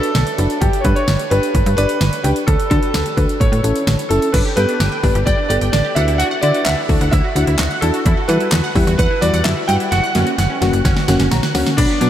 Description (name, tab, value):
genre	synth-pop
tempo	129 BPM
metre	4/4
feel	straight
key	unclear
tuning	A4 = 440 Hz
part	warm grand piano	melody	0.0-12.1 s	D4 to G5	-20 LUFS	equal	lush chorus, diffuse ambient delay
part	mellow FM electric piano	accompaniment	0.0-12.1 s	F#3 to A#5	-21 LUFS	left 1 dB	chorus
part	pop drum kit	drums	0.0-12.1 s	crash cymbal, handclaps, hi-hat, kick drum, snare drum	-19 LUFS	equal	none
part	slap-like FM bass	bass	0.2-12.1 s	F#1 to E3	-18 LUFS	equal	none
part	wide unison pluck	arpeggios	4.3-12.1 s	F#3 to F#6	-24 LUFS	right 2 dB	phaser, diffuse ambient delay
room	moderate huge ambient reverb, RT60 8.2 s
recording	dreamy mix soaked in reverb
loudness	-14 LUFS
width	side -11 dB against mid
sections	0.0-4.3 A section; 4.3-11.8 B section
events	drum fill 9.9-11.8; FM electric piano fill 11.1-11.8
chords	0.0 Bm; 0.6 G; 2.5 D; 3.4 A; 4.3 Gadd9; 6.0 Dadd9; 8.1 Emadd9; 9.9 F#